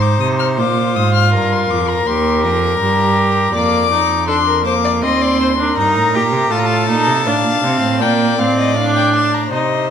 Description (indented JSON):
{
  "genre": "classical, baroque-style fugue for string quartet",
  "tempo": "80 BPM",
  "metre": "4/4",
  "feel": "straight",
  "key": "unclear",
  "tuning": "A4 = 440 Hz",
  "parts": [
    { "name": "warm violin", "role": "melody", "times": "0.0-9.9 s", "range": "Eb5 to F6", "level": "-19 LUFS", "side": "left 9 dB", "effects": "none" },
    { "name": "warm violin", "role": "second line", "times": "0.0-9.9 s", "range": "A4 to F5", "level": "-20 LUFS", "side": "left 3 dB", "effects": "none" },
    { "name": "rich viola", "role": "accompaniment", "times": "0.0-9.9 s", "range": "Bb3 to G4", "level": "-18 LUFS", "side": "right 1 dB", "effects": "none" },
    { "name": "rich cello", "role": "bass", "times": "0.0-9.9 s", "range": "Eb2 to C3", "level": "-18 LUFS", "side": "right 4 dB", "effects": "none" }
  ],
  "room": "wet recital hall reverb, RT60 1.5 s",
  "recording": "none",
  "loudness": "-12 LUFS",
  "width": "side -8 dB against mid",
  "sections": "0.0-9.5 A section",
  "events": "none",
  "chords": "0.0 Fm7 (rootless); 0.6 Bb; 2.1 Eb; 3.5 Bb/F; 5.0 Cm7/Eb; 6.5 F/A; 8.0 Bb",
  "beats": "| 0.59 1.34 2.08 2.81 | 3.55 4.28 5.03 5.78 | 6.52 7.26 8.01 8.77 | 9.52"
}